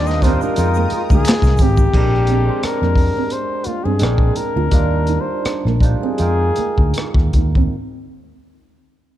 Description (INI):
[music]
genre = R&B, neo-soul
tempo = 75-88 BPM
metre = 4/4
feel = swing 53% on 16ths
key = unclear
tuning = A4 = 440 Hz
[part]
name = breathy flugelhorn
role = melody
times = 0.0-7.3 s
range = F4 to Eb5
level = -22 LUFS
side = left 3 dB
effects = slapback echo
[part]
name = barky tine electric piano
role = accompaniment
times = 0.0-7.8 s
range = G3 to G5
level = -24 LUFS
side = right 3 dB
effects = overdrive, phaser
[part]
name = warm analog pad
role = sustained chords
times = 0.0-1.9 s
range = Bb4 to Eb6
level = -32 LUFS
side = equal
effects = chorus
[part]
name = fingered electric bass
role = bass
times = 0.0-7.7 s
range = Ab1 to G2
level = -18 LUFS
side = equal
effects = none
[part]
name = crunchy breakbeat drum kit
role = drums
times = 0.1-7.7 s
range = crash cymbal, handclaps, hi-hat, kick drum, rim click, snare drum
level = -17 LUFS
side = equal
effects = none
[part]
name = egg shaker and finger snaps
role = percussion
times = 0.1-1.9 s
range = none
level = -38 LUFS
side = left 2 dB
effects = none
[part]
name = nylon-string guitar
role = second line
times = 0.2-7.7 s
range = Ab3 to F4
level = -26 LUFS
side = right 6 dB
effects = none
[sound]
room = light reverb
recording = dark, warm production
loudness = -14 LUFS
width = side -12 dB against mid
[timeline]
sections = 0.0-1.9 A section; 1.9-7.7 B section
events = slowing down 1.9-7.7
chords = 0.0 Ebmaj9; 0.6 Fm11; 1.9 Bb13; 4.7 Ebmaj9; 6.2 Fm11